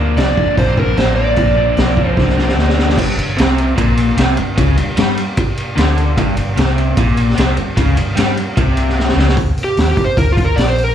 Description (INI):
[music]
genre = blues rock power trio and southern rock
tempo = 150 BPM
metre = 4/4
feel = straight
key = G minor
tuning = A4 = 440 Hz
[part]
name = crunchy overdriven guitar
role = riff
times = 0.0-9.4 s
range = G2 to D4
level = -18 LUFS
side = left 1 dB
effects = slapback echo
[part]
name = vintage muted fingered electric bass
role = bass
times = 0.0-10.9 s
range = G1 to G2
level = -16 LUFS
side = equal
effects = none
[part]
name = overdriven slide guitar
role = melody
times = 0.2-2.5, 9.6-10.9 s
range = F4 to D5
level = -18 LUFS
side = right 2 dB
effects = slapback echo, tape echo
[part]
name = raw garage drum kit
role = drums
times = 0.2-10.9 s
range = crash cymbal, hi-hat, kick drum, ride cymbal, snare drum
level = -16 LUFS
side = equal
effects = none
[part]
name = overdriven tonewheel organ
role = sustained chords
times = 3.0-9.3 s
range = Bb3 to D5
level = -30 LUFS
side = right 4 dB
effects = none
[sound]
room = light reverb, small room ambience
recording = live gig heard through the venue's PA, club ambience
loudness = -12 LUFS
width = side -10 dB against mid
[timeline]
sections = 0.0-3.0 A section; 3.0-9.4 B section; 9.4-10.9 C section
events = drum fill 2.2-3.0, 9.0-9.4; electric slide guitar solo 9.4-10.9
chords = 0.0 Bb; 3.0 Gm; 9.4 Gm (rootless)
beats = 0.17 0.57 0.97 | 1.38 1.78 2.18 2.58 | 2.98 3.38 3.78 4.18 | 4.58 4.97 5.37 5.77 | 6.17 6.57 6.97 7.37 | 7.77 8.17 8.57 8.97 | 9.37 9.77 10.17 10.57